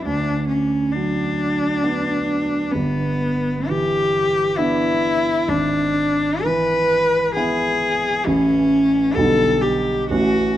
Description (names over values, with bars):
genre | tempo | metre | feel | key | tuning
classical, romantic duo for cello and grand piano | 66 BPM | 3/4 | uneven beats, rubato | unclear | A4 = 440 Hz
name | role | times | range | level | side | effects
warm cello | melody | 0.0-10.6 s | B3 to B4 | -18 LUFS | left 1 dB | none
dark grand piano | accompaniment | 0.0-10.6 s | G1 to E4 | -22 LUFS | right 2 dB | none
room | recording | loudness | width
moderate scoring stage reverb, RT60 1.8 s | close, detailed microphones | -17 LUFS | side -12 dB against mid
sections
0.0-10.6 A section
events
none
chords
0.1 Bm/D; 2.7 Em7/G; 5.5 E7/G#; 8.3 A; 9.2 G/B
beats
| 0.06 0.96 1.83 | 2.74 3.70 4.59 | 5.48 6.44 7.35 | 8.26 9.16 10.10